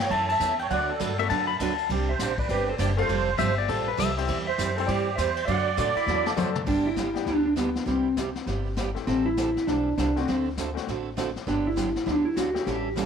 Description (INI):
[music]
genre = country, western swing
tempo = 200 BPM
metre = 4/4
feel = swing 63% on 8ths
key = G major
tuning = A4 = 441 Hz
[part]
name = clean lap steel guitar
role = melody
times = 0.0-12.9 s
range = B3 to A5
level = -27 LUFS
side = equal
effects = tape echo
[part]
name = musette accordion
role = second line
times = 0.0-6.3 s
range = G4 to E5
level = -29 LUFS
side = right 10 dB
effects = none
[part]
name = bright upright piano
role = accompaniment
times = 0.0-12.7 s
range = G3 to D5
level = -34 LUFS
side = left 12 dB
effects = none
[part]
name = upright bass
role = bass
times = 0.0-13.1 s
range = F1 to A2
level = -31 LUFS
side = left 1 dB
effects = none
[part]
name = vintage brush drum kit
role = drums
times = 0.0-13.1 s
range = brushed snare drum, crash cymbal, hi-hat, kick drum, ride cymbal, snare drum, toms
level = -34 LUFS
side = left 5 dB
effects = none
[part]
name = picked steel-string acoustic guitar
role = accompaniment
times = 0.1-13.1 s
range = C3 to C5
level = -31 LUFS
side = right 9 dB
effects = none
[part]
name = pedal steel guitar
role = second line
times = 1.2-6.6 s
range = E4 to B5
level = -29 LUFS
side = left 9 dB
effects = none
[sound]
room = moderate plate reverb, RT60 2.0 s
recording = 1960s-style stereo with parts hard left and right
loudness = -23 LUFS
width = side -7 dB against mid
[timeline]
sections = 0.0-6.7 A section; 6.7-13.1 B section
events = drum fill 6.1-6.7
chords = 0.0 A; 0.7 D6; 1.9 Csus2; 3.1 Fadd9; 4.3 C/E; 5.5 D; 6.7 G; 7.9 Cmaj7; 9.1 Am7; 10.3 D7; 11.5 Gmaj7